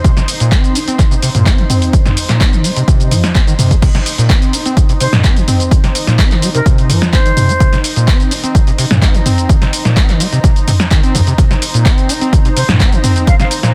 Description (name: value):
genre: acid house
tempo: 127 BPM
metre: 4/4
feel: straight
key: C minor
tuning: A4 = 438 Hz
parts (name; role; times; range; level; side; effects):
- overdriven acid bass; riff; 0.0-13.7 s; C2 to Eb4; -18 LUFS; equal; distortion, tube saturation, subtle chorus, sidechain pumping
- electronic kick drum; drums; 0.0-13.4 s; none; -13 LUFS; equal; overdrive
- punchy analog drum machine; drums; 0.0-13.7 s; crash cymbal, handclaps, hi-hat, shaker, snare drum, toms; -18 LUFS; equal; none
- granular cloud pad; texture; 0.0-13.7 s; Eb4 to C6; -26 LUFS; equal; built-in reverb, sidechain pumping
- breathy silver concert flute; melody; 5.0-7.8, 12.6-13.5 s; Bb4 to F5; -22 LUFS; equal; tape echo
room: digital ambience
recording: dense, heavily limited modern master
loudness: -12 LUFS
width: mono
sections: 0.0-3.8 A section; 3.8-13.7 B section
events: drop 3.8-13.7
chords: 0.0 Cm; 3.8 Cm7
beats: | 0.05 0.52 0.99 1.46 | 1.94 2.41 2.88 3.35 | 3.83 4.30 4.77 5.24 | 5.71 6.19 6.66 7.13 | 7.61 8.08 8.55 9.02 | 9.49 9.97 10.44 10.91 | 11.38 11.86 12.33 12.80 | 13.27